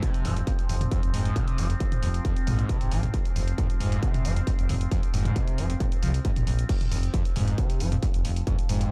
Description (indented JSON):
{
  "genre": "driving peak-time techno",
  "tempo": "135 BPM",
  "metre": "4/4",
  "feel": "straight",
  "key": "F minor",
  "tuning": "A4 = 440 Hz",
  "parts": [
    { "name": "screaming distorted acid line", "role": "riff", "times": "0.0-8.9 s", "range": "Eb2 to F3", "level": "-34 LUFS", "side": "equal", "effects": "distortion, lush chorus, sidechain pumping" },
    { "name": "overtone-sweeping drone", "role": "drone", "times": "0.0-8.9 s", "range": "F3 to C4", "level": "-40 LUFS", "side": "equal", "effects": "chorus, built-in reverb, phaser, sidechain pumping" },
    { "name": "electronic kick drum", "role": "drums", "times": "0.0-8.6 s", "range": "none", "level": "-29 LUFS", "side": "equal", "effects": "distortion" },
    { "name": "techno drum kit", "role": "drums", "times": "0.0-8.9 s", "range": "crash cymbal, hi-hat, toms", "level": "-37 LUFS", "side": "equal", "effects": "none" },
    { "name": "growling FM bass", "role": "bass", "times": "0.2-8.9 s", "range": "F1 to C2", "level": "-29 LUFS", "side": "equal", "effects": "sidechain pumping" }
  ],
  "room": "little or no reverb",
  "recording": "dark, warm production",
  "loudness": "-26 LUFS",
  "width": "mono",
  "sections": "0.0-8.9 A section",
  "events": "none",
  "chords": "0.0 F5"
}